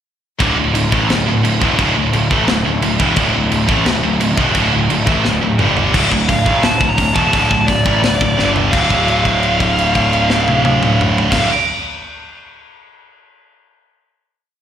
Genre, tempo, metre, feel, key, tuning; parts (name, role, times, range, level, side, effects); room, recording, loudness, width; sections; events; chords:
heavy metal; 173 BPM; 4/4; straight; D minor; A4 = 436 Hz
heavy high-gain guitar; riff; 0.4-11.5 s; D2 to A3; -20 LUFS; left 8 dB; distortion
heavy high-gain guitar; riff; 0.4-11.5 s; D2 to A3; -19 LUFS; right 10 dB; distortion, slapback echo
high-gain distorted guitar; riff; 0.4-5.9 s; D2 to A3; -24 LUFS; right 1 dB
fuzz picked electric bass; bass; 0.4-11.5 s; D1 to A1; -18 LUFS; equal; overdrive
tight metal drum kit; drums; 0.4-11.4 s; crash cymbal, hi-hat, kick drum, snare drum, toms; -18 LUFS; equal
high-gain lead guitar; melody; 6.3-11.5 s; D5 to Bb5; -17 LUFS; equal; distortion, slapback echo, digital delay
small room ambience; live gig heard through the venue's PA, recital hall reverb; -12 LUFS; side -9 dB against mid
0.4-5.9 riff; 5.9-8.7 outro; 8.7-11.5 final chord
drum fill 5.2-5.9, 8.4-8.7; held note 8.7-11.3
0.4 D5; 5.6 G5; 5.9 D5; 8.4 G5; 8.7 Dm